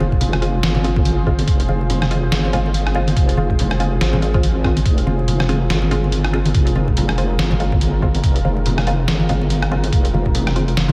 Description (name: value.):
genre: deep dubstep.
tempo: 142 BPM.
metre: 4/4.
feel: swing 58% on 16ths, half-time.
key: F minor.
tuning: A4 = 445 Hz.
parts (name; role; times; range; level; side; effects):
deep dark ambient pad; sustained chords; 0.0-10.9 s; F4 to C5; -29 LUFS; equal; chorus, built-in reverb.
filtered dub chord stab; stabs; 0.0-10.6 s; Ab3 to F4; -28 LUFS; equal; phaser, dub echo.
deep soft wobble bass; bass; 0.0-10.9 s; F1 to Ab1; -21 LUFS; equal; chorus.
congas; percussion; 0.0-10.9 s; none; -27 LUFS; equal; none.
electronic kick drum; drums; 0.1-10.3 s; none; -20 LUFS; equal; none.
trip hop sampler-style drum kit; drums; 0.2-10.9 s; hi-hat, rim click, snare drum; -27 LUFS; equal; none.
room: light reverb, digital ambience.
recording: none.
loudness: -17 LUFS.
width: mono.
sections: 0.0-10.9 A section.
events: none.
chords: 0.0 Fm.